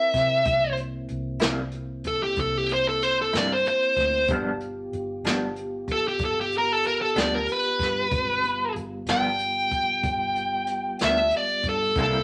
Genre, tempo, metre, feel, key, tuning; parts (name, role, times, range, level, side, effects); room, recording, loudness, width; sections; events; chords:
slow blues; 63 BPM (dotted quarters); 12/8; straight; A4 = 440 Hz
smooth overdriven lead guitar; melody; 0.0-12.2 s; G4 to G5; -25 LUFS; equal
mellow tonewheel organ; sustained chords; 0.0-12.2 s; G3 to Bb4; -37 LUFS; equal; slow rotary speaker
vintage muted fingered electric bass; bass; 0.1-12.2 s; G1 to C3; -38 LUFS; equal
jazz brush drum kit; drums; 0.1-12.1 s; hi-hat, kick drum, snare drum; -31 LUFS; equal
electric guitar through a small old amp; accompaniment; 1.4-12.2 s; G2 to E4; -31 LUFS; equal; tremolo
moderate studio reverb, RT60 0.7 s; -25 LUFS; mono
0.0-12.2 A section
0.0 C7; 4.3 G7